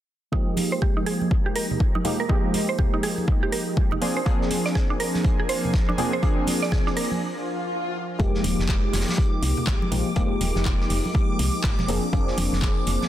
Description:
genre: deep house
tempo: 122 BPM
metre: 4/4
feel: swing 61% on 16ths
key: F dorian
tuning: A4 = 443 Hz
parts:
  - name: mallet-like synth pluck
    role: arpeggios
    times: 0.3-7.0 s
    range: D4 to D5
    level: -30 LUFS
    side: right 4 dB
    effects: chorus, sidechain pumping, dub echo
  - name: warm analog keys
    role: stabs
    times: 0.3-13.1 s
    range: F3 to Ab4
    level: -26 LUFS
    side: equal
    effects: chorus, vintage 12-bit sampler grit, sidechain pumping, low-pass filter, dub echo
  - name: electronic kick drum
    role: drums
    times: 0.3-12.7 s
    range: none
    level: -23 LUFS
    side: equal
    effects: overdrive
  - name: deep house drum kit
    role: drums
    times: 0.6-13.0 s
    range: handclaps, hi-hat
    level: -32 LUFS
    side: right 1 dB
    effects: overdrive
  - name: congas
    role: percussion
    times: 0.6-13.1 s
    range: none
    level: -32 LUFS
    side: right 3 dB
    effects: none
  - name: airy breathy pad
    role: sustained chords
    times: 4.3-8.2 s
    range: F3 to Ab5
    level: -32 LUFS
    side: left 1 dB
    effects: chorus, sidechain pumping
  - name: loose indie drum kit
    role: drums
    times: 4.3-13.1 s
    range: hi-hat, snare drum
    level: -37 LUFS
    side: equal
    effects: sidechain pumping on hats, high-pass filter on hats, high-pass filter on snare, high-pass filter on room
  - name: swell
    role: sound effects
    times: 7.3-8.2 s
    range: none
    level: -30 LUFS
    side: left 1 dB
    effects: none
  - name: woody FM bass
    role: bass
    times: 8.2-13.0 s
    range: Eb1 to C2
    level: -26 LUFS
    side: equal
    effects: tube saturation, sidechain pumping
  - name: string machine, violins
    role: texture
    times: 8.2-13.1 s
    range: D6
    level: -34 LUFS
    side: equal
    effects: ensemble chorus, sidechain pumping
room: light reverb, studio reverb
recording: dense, heavily limited modern master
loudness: -21 LUFS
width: side -12 dB against mid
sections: 0.3-8.2 A section; 8.2-13.1 B section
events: filter sweep on synth keys 0.3-8.2, 8.2-13.1; filter sweep on synth arpeggio sound 0.3-8.2; break 7.2-8.2; swell 7.3-8.2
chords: 0.3 Fm11; 4.0 Bb9/F; 8.2 Fm11; 11.9 Bb9/F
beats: | 0.33 0.82 1.31 1.80 | 2.29 2.79 3.28 3.77 | 4.26 4.75 5.25 5.74 | 6.23 6.72 7.21 7.70 | 8.20 8.69 9.18 9.67 | 10.16 10.65 11.15 11.64 | 12.13 12.62

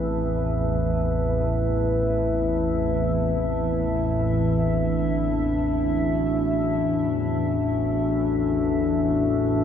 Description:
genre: dark ambient drone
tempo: free time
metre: none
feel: none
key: A dorian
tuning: A4 = 440 Hz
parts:
  - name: dark analog pad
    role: sustained chords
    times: 0.0-9.6 s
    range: C4 to E5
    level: -24 LUFS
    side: left 2 dB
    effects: lush chorus
  - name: organ-like drone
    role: drone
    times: 0.0-9.6 s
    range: A1 to E2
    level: -24 LUFS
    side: right 1 dB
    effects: ensemble chorus, built-in reverb
room: wet cathedral reverb, RT60 5.9 s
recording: in a vast, echoing space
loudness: -21 LUFS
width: side -8 dB against mid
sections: 0.0-9.6 A section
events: none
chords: 0.0 Am; 4.7 Dadd9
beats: free time

